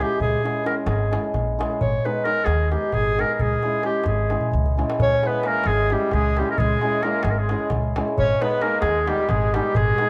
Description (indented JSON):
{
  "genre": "balkan folk, Balkan wedding band",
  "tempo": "264 BPM (eighths)",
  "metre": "7/8",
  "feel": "straight",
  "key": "C# dorian sharp4",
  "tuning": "A4 = 441 Hz",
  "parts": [
    { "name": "clear clarinet", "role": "melody", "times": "0.0-10.1 s", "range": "G4 to C#5", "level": "-25 LUFS", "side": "equal", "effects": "analog delay" },
    { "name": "hammered dulcimer", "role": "accompaniment", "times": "0.0-10.1 s", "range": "G#3 to G#4", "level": "-28 LUFS", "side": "equal", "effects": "none" },
    { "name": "darbuka", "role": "percussion", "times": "0.1-10.1 s", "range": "none", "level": "-30 LUFS", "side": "equal", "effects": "none" },
    { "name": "upright bass", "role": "bass", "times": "0.2-9.9 s", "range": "G#1 to D#2", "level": "-26 LUFS", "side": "equal", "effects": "none" },
    { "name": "clear trumpet", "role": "second line", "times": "5.0-10.1 s", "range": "G3 to C#4", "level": "-33 LUFS", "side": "equal", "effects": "none" }
  ],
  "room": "moderate studio reverb, RT60 0.6 s",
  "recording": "none",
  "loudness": "-22 LUFS",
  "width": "mono",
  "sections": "0.0-5.0 A section; 5.0-10.1 A section",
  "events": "drum fill 4.4-5.0",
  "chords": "0.0 C#m; 1.8 G#m; 3.4 C#m; 8.2 G#m",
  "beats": "| 0.21 0.44 0.67 0.90 1.13 1.36 1.59 | 1.81 2.04 2.27 2.50 2.73 2.96 3.19 | 3.41 3.64 3.87 4.10 4.33 4.55 4.78 | 5.01 5.23 5.46 5.69 5.92 6.14 6.37 | 6.59 6.82 7.05 7.27 7.50 7.72 7.95 | 8.18 8.40 8.63 8.86 9.08 9.31 9.53 | 9.76 9.98"
}